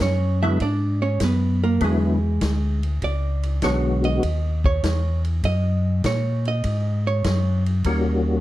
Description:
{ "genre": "soul jazz organ trio", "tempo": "99 BPM", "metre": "4/4", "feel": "swing 69% on 8ths", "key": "unclear", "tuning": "A4 = 439 Hz", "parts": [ { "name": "archtop guitar, miked and amplified", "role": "accompaniment", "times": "0.0-7.6 s", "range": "G#3 to E5", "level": "-26 LUFS", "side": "right 4 dB", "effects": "none" }, { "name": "mellow tonewheel organ", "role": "bass", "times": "0.0-8.4 s", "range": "B1 to A#2", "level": "-21 LUFS", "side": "left 1 dB", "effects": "overdrive, chorus vibrato, slow rotary speaker" }, { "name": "vintage drum kit", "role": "drums", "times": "0.0-8.0 s", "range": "hi-hat, kick drum, ride cymbal, snare drum", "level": "-28 LUFS", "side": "equal", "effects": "none" }, { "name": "percussive tonewheel organ", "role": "melody", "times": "0.4-4.2, 7.9-8.4 s", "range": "D3 to F#4", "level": "-23 LUFS", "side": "left 2 dB", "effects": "slow rotary speaker, chorus vibrato" } ], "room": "light reverb", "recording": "dark, warm production", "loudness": "-19 LUFS", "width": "side -15 dB against mid", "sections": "0.0-8.4 A section", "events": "hollow-body jazz guitar solo 0.0-8.4", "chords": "0.0 E7; 4.2 D#m7; 6.6 F#sus2; 7.8 D#7#9", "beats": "0.00 0.60 1.21 | 1.81 2.42 3.02 3.62 | 4.23 4.83 5.43 6.04 | 6.64 7.25 7.85" }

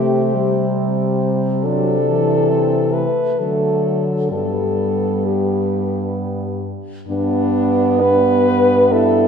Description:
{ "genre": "classical, lyrical piece for horn quartet", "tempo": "63-71 BPM", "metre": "3/4", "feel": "rubato", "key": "G major", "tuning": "A4 = 440 Hz", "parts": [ { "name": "clear French horn", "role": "melody", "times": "0.0-9.3 s", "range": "D4 to B4", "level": "-18 LUFS", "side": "left 4 dB", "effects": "none" }, { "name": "warm French horn", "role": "second line", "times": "0.0-9.3 s", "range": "A3 to E4", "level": "-22 LUFS", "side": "right 5 dB", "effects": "none" }, { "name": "mellow French horn", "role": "accompaniment", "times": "0.0-9.3 s", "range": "E3 to B3", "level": "-21 LUFS", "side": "right 1 dB", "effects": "none" }, { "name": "warm French horn", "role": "bass", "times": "0.0-9.3 s", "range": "G2 to D3", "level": "-22 LUFS", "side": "equal", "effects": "none" } ], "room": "wet scoring stage reverb, RT60 1.9 s", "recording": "heard from further back in the room", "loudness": "-15 LUFS", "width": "side -7 dB against mid", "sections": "0.0-7.1 A section; 7.1-9.3 B section", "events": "none", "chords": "0.0 C5; 1.6 Am/C; 3.4 D; 4.3 G", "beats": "0.77 | 1.64 2.51 3.38 | 4.31 5.24 6.16 | 7.08 8.02 8.92" }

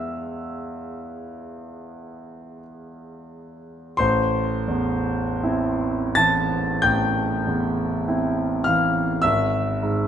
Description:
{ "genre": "classical, romantic nocturne for solo piano", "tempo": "37-52 BPM", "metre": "4/4", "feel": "rubato", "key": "A minor", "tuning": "A4 = 440 Hz", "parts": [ { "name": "clear concert grand piano", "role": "solo", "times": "0.0-10.1 s", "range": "G#1 to A6", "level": "-21 LUFS", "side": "equal", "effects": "none" } ], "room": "moderate recital hall reverb, RT60 1.8 s", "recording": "minimal, uncompressed stereo recording", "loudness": "-20 LUFS", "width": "side -9 dB against mid", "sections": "0.0-4.0 A section; 4.0-10.1 A section", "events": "none", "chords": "0.0 E; 4.0 Am; 9.2 E/G#", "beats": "1.21 2.62 | 3.99 5.41 6.83 8.06 | 9.23" }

